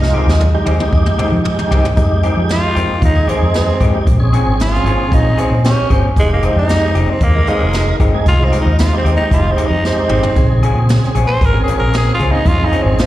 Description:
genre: straight-eighth soul blues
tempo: 114 BPM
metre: 4/4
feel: straight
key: F minor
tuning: A4 = 442 Hz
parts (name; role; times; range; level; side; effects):
- growling tenor saxophone; melody; 0.0-13.1 s; F3 to C5; -19 LUFS; equal; slapback echo
- tonewheel organ; accompaniment; 0.0-13.0 s; Db3 to Bb4; -20 LUFS; right 3 dB; overdrive, chorus vibrato, slow rotary speaker, slapback echo
- vintage muted fingered electric bass; bass; 0.0-13.1 s; F1 to F3; -14 LUFS; equal; none
- jazz brush drum kit; drums; 0.0-13.1 s; hi-hat, kick drum, snare drum, toms; -18 LUFS; equal; none
- electric guitar through a small old amp; stabs; 0.1-12.9 s; Eb3 to Ab4; -22 LUFS; left 4 dB; slapback echo
room: small room ambience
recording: live gig heard through the venue's PA, recital hall reverb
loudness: -11 LUFS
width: side -14 dB against mid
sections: 0.0-2.0 A section; 2.0-13.1 B section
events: drum fill 0.0-2.0, 9.8-10.4; tenor saxophone solo 2.0-13.1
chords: 0.0 Fm9; 4.1 Bbm9; 6.2 Fm9; 10.4 Bbm9

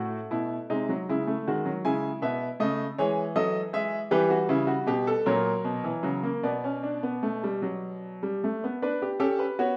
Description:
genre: classical, baroque-style 4-part fugue for grand piano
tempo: 52 BPM (dotted quarters)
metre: 6/8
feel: straight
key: B minor from 4.1 s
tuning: A4 = 440 Hz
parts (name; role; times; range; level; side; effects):
- bright baby grand piano; solo; 0.0-9.8 s; A2 to G#5; -28 LUFS; equal; none
room: moderate recital hall reverb, RT60 1.3 s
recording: none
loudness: -28 LUFS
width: mono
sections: 0.0-8.8 A section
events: none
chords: 0.0 Asus2; 0.7 G#/B#; 1.9 C#m; 3.0 C#m/E; 4.1 Em; 5.3 F#7/A#; 6.5 Bm

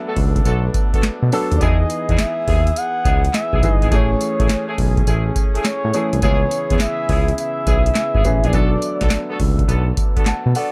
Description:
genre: R&B, new jack swing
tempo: 104 BPM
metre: 4/4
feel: swing 67% on 16ths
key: E major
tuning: A4 = 440 Hz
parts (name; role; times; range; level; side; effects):
- expressive synth lead; melody; 0.0-9.6 s; C#5 to F#5; -26 LUFS; equal; chorus, tape echo
- warm concert grand piano; accompaniment; 0.0-10.7 s; E3 to A5; -28 LUFS; equal; none
- warm brass ensemble; sustained chords; 0.0-10.7 s; C#3 to G#4; -33 LUFS; equal; none
- mellow horn section; stabs; 0.1-10.7 s; A3 to A4; -30 LUFS; equal; none
- smooth synth bass; bass; 0.2-10.5 s; G1 to B2; -21 LUFS; equal; none
- booming analog drum machine; drums; 0.2-10.7 s; handclaps, hi-hat, kick drum, snare drum, tambourine; -21 LUFS; equal; none
room: little or no reverb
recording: dark, warm production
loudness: -18 LUFS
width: mono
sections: 0.0-10.7 A section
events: none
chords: 0.0 Bm7; 1.6 Emaj7; 3.9 Amaj7; 6.2 C#m7; 8.5 Bm7

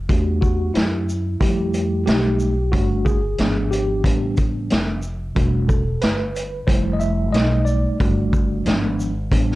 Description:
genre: hip hop, jazz-hop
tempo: 91 BPM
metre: 4/4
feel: swing 57% on 16ths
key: unclear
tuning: A4 = 438 Hz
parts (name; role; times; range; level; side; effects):
- upright bass; bass; 0.0-9.6 s; E1 to F#2; -22 LUFS; equal; none
- tine electric piano; accompaniment; 0.1-9.6 s; E#3 to E5; -22 LUFS; equal; overdrive, fast stereo tremolo, plate reverb
- vintage drum kit; drums; 0.1-9.6 s; hi-hat, kick drum, shaker, snare drum; -20 LUFS; equal; vintage 12-bit sampler grit
room: moderate studio reverb, RT60 0.6 s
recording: dark, warm production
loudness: -17 LUFS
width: side -18 dB against mid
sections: 0.0-9.6 A section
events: tine electric piano solo 0.0-9.6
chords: 0.1 Em11; 1.4 Fmaj9; 2.1 Baug7; 2.7 Dadd11/G; 3.4 G#dim7; 4.0 A9sus4; 5.4 Em11; 6.7 Fmaj9; 7.3 B7alt; 8.0 Dadd11/G; 8.7 G#dim7

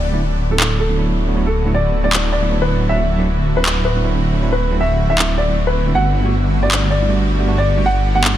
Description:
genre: future bass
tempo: 157 BPM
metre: 4/4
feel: swing 54% on 16ths, half-time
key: D major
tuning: A4 = 441 Hz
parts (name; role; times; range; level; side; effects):
- dark grand piano; melody; 0.0-8.4 s; A4 to F#5; -21 LUFS; equal; ping-pong delay
- shimmering ambient pad; sustained chords; 1.0-8.4 s; D3 to G4; -28 LUFS; right 1 dB; chorus, built-in reverb
- wide detuned saw bass; bass; 0.0-8.4 s; D1 to G1; -17 LUFS; equal; chorus
- tine electric piano; accompaniment; 0.1-8.4 s; F#3 to F#4; -24 LUFS; right 5 dB; ping-pong delay
- electronic handclaps; drums; 0.6-8.3 s; none; -23 LUFS; equal; overdrive, studio reverb
room: digital ambience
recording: dense, heavily limited modern master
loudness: -14 LUFS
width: side -12 dB against mid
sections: 0.0-8.4 A section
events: none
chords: 0.0 D69; 2.9 D9; 6.0 Gmaj7

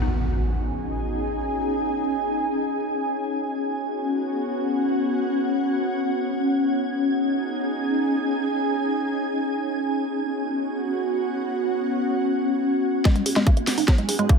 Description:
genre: psychedelic trance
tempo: free time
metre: none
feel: none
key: unclear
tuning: A4 = 438 Hz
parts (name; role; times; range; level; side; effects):
- swarming drone; sustained chords; 0.7-14.4 s; B3 to C#4; -25 LUFS; left 1 dB; built-in reverb, sidechain pumping
- impact; sound effects; 0.0-1.5 s; none; -26 LUFS; equal; none
- ethereal airy pad; texture; 0.0-14.4 s; B3 to G#5; -26 LUFS; right 1 dB; ensemble chorus, built-in reverb, sidechain pumping
- woody wave-folded pluck; riff; 13.1-14.3 s; F#3 to G#4; -25 LUFS; moving between left 7 dB and right 6 dB; chorus, auto-pan, sidechain pumping, tape echo
- electronic kick drum; drums; 13.1-14.4 s; none; -17 LUFS; equal; overdrive
- garage drum kit; drums; 13.1-14.4 s; hi-hat, snare drum; -26 LUFS; equal; overdrive, low-pass filter on hats, low-pass filter on cymbals, low-pass filter on snare
room: moderate digital room reverb, RT60 1.1 s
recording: none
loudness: -22 LUFS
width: side -5 dB against mid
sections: 0.0-13.1 A section; 13.1-14.4 B section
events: impact 0.0-1.5; filter sweep on synth drone 0.0-13.1; build-up 13.1-14.4; drum fill 13.1-14.4; filter sweep on synth arpeggio sound 13.1-14.4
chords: 0.0 B5; 13.1 G#5

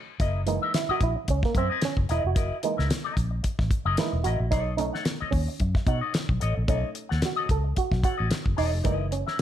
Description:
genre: funk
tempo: 111 BPM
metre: 4/4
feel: swing 56% on 16ths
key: F# mixolydian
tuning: A4 = 440 Hz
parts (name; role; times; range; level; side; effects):
- electric guitar with an envelope filter; accompaniment; 0.2-9.4 s; E4 to F#5; -32 LUFS; left 6 dB; wah
- vintage muted fingered electric bass; bass; 0.2-9.2 s; E1 to B2; -27 LUFS; equal; none
- damped 70s drum kit; drums; 0.2-9.4 s; hi-hat, kick drum, snare drum; -27 LUFS; equal; none
- muted clav; stabs; 0.5-9.4 s; E3 to A4; -30 LUFS; right 6 dB; auto-wah
room: light reverb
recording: none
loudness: -23 LUFS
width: side -11 dB against mid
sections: 0.2-9.4 A section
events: band accent 0.0; clav solo 0.2-9.4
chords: 0.2 F#13; 4.5 B9; 8.8 F#13

